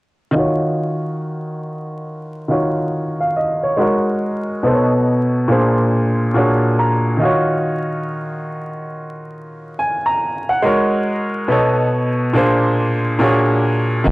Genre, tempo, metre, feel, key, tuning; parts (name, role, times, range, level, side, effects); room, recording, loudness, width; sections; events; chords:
hip hop; 70 BPM; 4/4; swing 64% on 16ths; A4 = 439 Hz
bright upright piano; accompaniment; 0.3-14.1 s; Bb2 to Bb5; -16 LUFS; equal; cassette tape, low-pass filter
soft dub sub bass; bass; 14.1 s; Eb1; -14 LUFS; equal; tube saturation
light reverb, small room ambience; dry, gritty hardware recording, transformer saturation, vinyl crackle; -15 LUFS; side -20 dB against mid
0.4-14.1 A section
filter sweep on upright piano 0.4-14.1; upright piano fill 5.9-7.2
0.4 Ebm7; 3.8 Ab9sus4; 4.6 B9; 5.5 Bb9; 6.4 Bb7alt; 7.2 Ebm7; 10.6 Ab9sus4; 11.5 B9; 12.4 Bb9; 13.2 Bb7alt